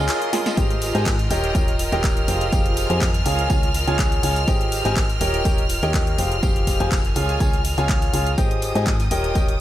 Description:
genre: piano house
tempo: 123 BPM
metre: 4/4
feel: swing 54% on 16ths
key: Ab major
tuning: A4 = 440 Hz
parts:
  - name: clear studio violin section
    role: sustained chords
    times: 0.0-9.6 s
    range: C6 to F6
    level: -29 LUFS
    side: right 1 dB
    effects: sidechain pumping
  - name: clear concert grand piano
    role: riff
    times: 0.0-9.5 s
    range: F4 to Ab5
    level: -24 LUFS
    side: equal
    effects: wide subtle chorus, sidechain pumping, low-pass filter, analog delay
  - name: solid FM bass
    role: bass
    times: 0.0-9.6 s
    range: Eb1 to Ab2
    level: -24 LUFS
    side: equal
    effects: sidechain pumping
  - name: bright studio string section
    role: texture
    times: 0.0-9.6 s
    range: F4 to Ab5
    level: -30 LUFS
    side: right 1 dB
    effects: sidechain pumping
  - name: house drum kit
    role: drums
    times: 0.1-9.6 s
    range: handclaps, hi-hat, snare drum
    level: -29 LUFS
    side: left 1 dB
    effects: none
  - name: vintage drum kit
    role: drums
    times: 0.1-9.5 s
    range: hi-hat, snare drum, tambourine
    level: -38 LUFS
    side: equal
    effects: none
  - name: electronic kick drum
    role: drums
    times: 0.6-9.5 s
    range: none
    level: -22 LUFS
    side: equal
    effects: none
room: light reverb, small room ambience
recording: none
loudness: -18 LUFS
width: side -13 dB against mid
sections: 0.0-9.6 A section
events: break 0.1-0.6; drum fill 0.3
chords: 0.0 Db; 0.6 Abmaj7; 1.3 Eb7; 2.3 Fmadd9; 3.3 Db; 4.5 Abmaj7; 5.2 Eb7; 6.2 Fmadd9; 7.2 Db; 8.4 Abmaj7

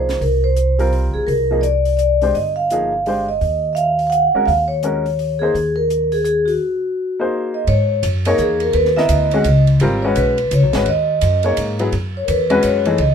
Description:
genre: modal jazz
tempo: 169 BPM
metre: 3/4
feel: swing 63% on 8ths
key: G# minor from 7.7 s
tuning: A4 = 440 Hz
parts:
  - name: vibraphone with medium mallets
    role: melody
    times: 0.0-13.1 s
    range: Gb4 to Gb5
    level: -17 LUFS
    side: equal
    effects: none
  - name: clear upright piano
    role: accompaniment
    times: 0.0-13.0 s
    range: E3 to D#5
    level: -20 LUFS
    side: left 2 dB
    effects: none
  - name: upright bass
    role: bass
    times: 0.0-13.1 s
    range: G1 to G#2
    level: -19 LUFS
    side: equal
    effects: none
  - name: compact cocktail drum kit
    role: drums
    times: 0.1-13.1 s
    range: hi-hat, ride cymbal, snare drum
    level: -31 LUFS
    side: right 3 dB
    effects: none
room: light reverb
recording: minimal, uncompressed stereo recording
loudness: -14 LUFS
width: side -7 dB against mid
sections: 0.0-7.7 A section; 7.7-13.1 B section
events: break 6.6-7.7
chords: 0.0 Cm11; 3.4 Ebm; 7.7 G#m11; 11.9 F#9sus4

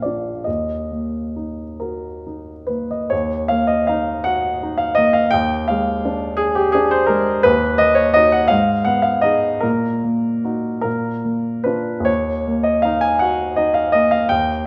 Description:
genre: classical, romantic nocturne for solo piano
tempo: 44-57 BPM (dotted quarters)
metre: 12/8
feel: rubato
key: Eb minor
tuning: A4 = 438 Hz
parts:
  - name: warm grand piano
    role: solo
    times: 0.0-14.7 s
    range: Bb1 to Ab5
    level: -18 LUFS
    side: equal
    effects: none
room: wet recital hall reverb, RT60 1.4 s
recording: none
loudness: -18 LUFS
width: mono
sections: 0.0-3.1 A section; 3.1-14.7 A section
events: none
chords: 0.5 Ebm; 5.3 Ddim/Eb; 7.4 Ebm; 8.5 Abm; 9.6 Ebm/Bb; 10.9 Bb; 12.1 Ebm

